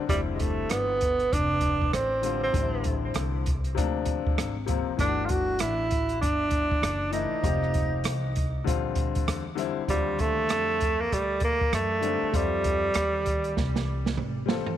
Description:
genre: hip hop, jazz-hop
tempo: 98 BPM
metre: 4/4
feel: swing 61% on 16ths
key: unclear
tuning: A4 = 442 Hz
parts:
  - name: warm upright piano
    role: accompaniment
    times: 0.0-14.7 s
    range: C3 to A4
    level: -32 LUFS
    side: left 11 dB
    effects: none
  - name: breathy tenor saxophone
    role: melody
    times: 0.1-14.2 s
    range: G3 to F#4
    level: -27 LUFS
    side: right 2 dB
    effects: tape echo
  - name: upright bass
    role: bass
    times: 0.1-14.7 s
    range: F1 to F#2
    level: -32 LUFS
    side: equal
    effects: transformer saturation
  - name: open jazz drum kit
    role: drums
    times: 0.1-14.8 s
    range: hi-hat, kick drum, rim click, snare drum, toms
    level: -29 LUFS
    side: right 1 dB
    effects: none
room: light reverb, small room ambience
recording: 1960s-style stereo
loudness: -24 LUFS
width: side -11 dB against mid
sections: 0.0-14.8 A section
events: drum fill 13.6-14.8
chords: 0.1 Fmaj9#11; 2.5 Am7; 3.8 Bb9; 5.0 Gsus2; 7.4 Fsus2; 8.7 Bb69; 9.9 Ebmaj9; 12.3 F9

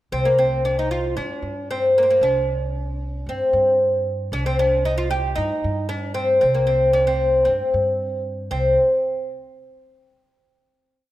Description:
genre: Arabic maqam ensemble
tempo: 114 BPM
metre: 4/4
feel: straight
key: C maqam bayati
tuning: A4 = 439 Hz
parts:
  - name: oud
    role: melody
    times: 0.1-8.8 s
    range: Bb3 to G4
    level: -19 LUFS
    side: equal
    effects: none
  - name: upright bass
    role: bass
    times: 0.1-8.8 s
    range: C2 to G2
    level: -26 LUFS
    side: right 1 dB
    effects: none
room: moderate concert hall reverb, RT60 1.8 s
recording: none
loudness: -18 LUFS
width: side -15 dB against mid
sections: 0.1-8.5 A section; 8.5-10.6 final note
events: none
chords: none

